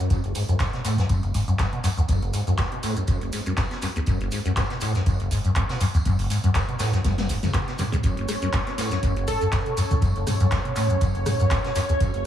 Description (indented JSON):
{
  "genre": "acid house",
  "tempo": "121 BPM",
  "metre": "4/4",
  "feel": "swing 55% on 16ths",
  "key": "F# minor",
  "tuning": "A4 = 440 Hz",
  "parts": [
    { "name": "liquid acid bass", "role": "riff", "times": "0.0-12.2 s", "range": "F#1 to B2", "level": "-23 LUFS", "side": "equal", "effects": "phaser, dub echo" },
    { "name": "maracas", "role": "percussion", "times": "0.0-12.1 s", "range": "none", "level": "-41 LUFS", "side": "right 2 dB", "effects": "dub echo" },
    { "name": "electro analog drum machine", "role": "drums", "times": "0.1-12.2 s", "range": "handclaps, hi-hat, rim click, toms", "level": "-30 LUFS", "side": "equal", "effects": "dub echo" },
    { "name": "electronic kick drum", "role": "drums", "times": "0.1-12.1 s", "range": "none", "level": "-27 LUFS", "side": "equal", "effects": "none" },
    { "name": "vintage brush drum kit", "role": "drums", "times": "0.1-12.1 s", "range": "hi-hat, snare drum, tambourine", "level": "-39 LUFS", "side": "equal", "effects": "high-pass filter on hats, high-pass filter on snare, high-pass filter on perc, high-pass filter on room" },
    { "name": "string machine, full ensemble", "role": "sustained chords", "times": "8.0-12.3 s", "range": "C#5", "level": "-29 LUFS", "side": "right 1 dB", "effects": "phaser, ensemble chorus, sidechain pumping" },
    { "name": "plucky unison lead", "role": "melody", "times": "9.3-9.8 s", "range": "A4", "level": "-31 LUFS", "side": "right 2 dB", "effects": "dub echo" }
  ],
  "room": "light reverb, small room ambience",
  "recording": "echo-heavy mix",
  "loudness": "-21 LUFS",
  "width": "side -10 dB against mid",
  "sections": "0.0-12.3 A section",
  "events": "filter sweep on acid bass 0.0-12.3; drum fill 7.0-8.0",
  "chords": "0.0 F#5",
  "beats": "| 0.10 0.60 1.10 1.59 | 2.09 2.58 3.08 3.58 | 4.07 4.57 5.06 5.56 | 6.05 6.55 7.05 7.54 | 8.04 8.53 9.03 9.53 | 10.02 10.52 11.01 11.51 | 12.01"
}